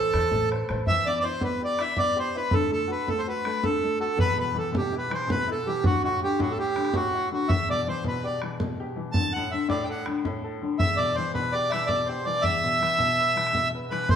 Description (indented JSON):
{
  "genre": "celtic folk, Celtic slip jig",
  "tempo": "109 BPM (dotted quarters)",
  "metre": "9/8",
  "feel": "straight",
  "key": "E minor",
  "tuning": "A4 = 441 Hz",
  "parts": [
    { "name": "accordion", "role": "melody", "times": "0.0-14.2 s", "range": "F#4 to A5", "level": "-25 LUFS", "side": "right 1 dB", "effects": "none" },
    { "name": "bright upright piano", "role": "accompaniment", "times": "0.0-14.2 s", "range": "D2 to C5", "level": "-30 LUFS", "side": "left 4 dB", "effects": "none" },
    { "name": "upright bass", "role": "bass", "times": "0.1-0.8, 14.1-14.2 s", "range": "A1 to E2", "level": "-30 LUFS", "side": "equal", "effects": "none" },
    { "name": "bodhran", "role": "percussion", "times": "0.1-14.2 s", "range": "none", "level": "-30 LUFS", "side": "equal", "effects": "none" }
  ],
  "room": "wet stone room reverb, RT60 1.3 s",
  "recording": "band playing live in one room",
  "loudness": "-23 LUFS",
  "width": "side -8 dB against mid",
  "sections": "0.9-14.1 A section",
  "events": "none",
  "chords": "0.0 Amadd9; 0.9 Em; 2.5 D; 4.2 E5; 5.8 Dadd9; 7.5 Em; 9.1 D5; 10.8 Em; 12.4 E5",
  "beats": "0.32 | 0.87 1.43 1.98 | 2.53 3.08 3.63 | 4.18 4.73 5.28 | 5.83 6.38 6.94 | 7.49 8.04 8.59 | 9.14 9.69 10.24 | 10.79 11.34 11.89 | 12.44 12.99 13.54 | 14.09"
}